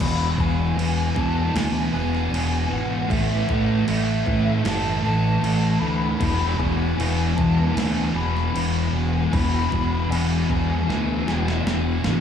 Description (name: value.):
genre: rock, shoegaze and dream pop.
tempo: 77 BPM.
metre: 4/4.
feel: straight.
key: unclear.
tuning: A4 = 440 Hz.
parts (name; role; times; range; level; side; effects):
mellow hollow silver concert flute; melody; 0.0-11.6 s; E5 to B5; -29 LUFS; left 1 dB; tape echo.
thick fuzz guitar; riff; 0.0-12.2 s; E2 to A3; -23 LUFS; equal; distortion, analog chorus.
growling fingered electric bass; bass; 0.0-12.2 s; E1 to A2; -24 LUFS; equal; overdrive.
crisp 8-bit digital drum machine; drums; 0.0-12.2 s; crash cymbal, kick drum, snare drum; -29 LUFS; equal; overdrive.
room: moderate plate reverb, RT60 3.3 s.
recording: dreamy mix soaked in reverb, small room reverb.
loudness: -19 LUFS.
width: side -8 dB against mid.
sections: 0.0-12.2 A section.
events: drum fill 10.9-12.2.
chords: 0.0 E; 3.1 A5; 6.2 E.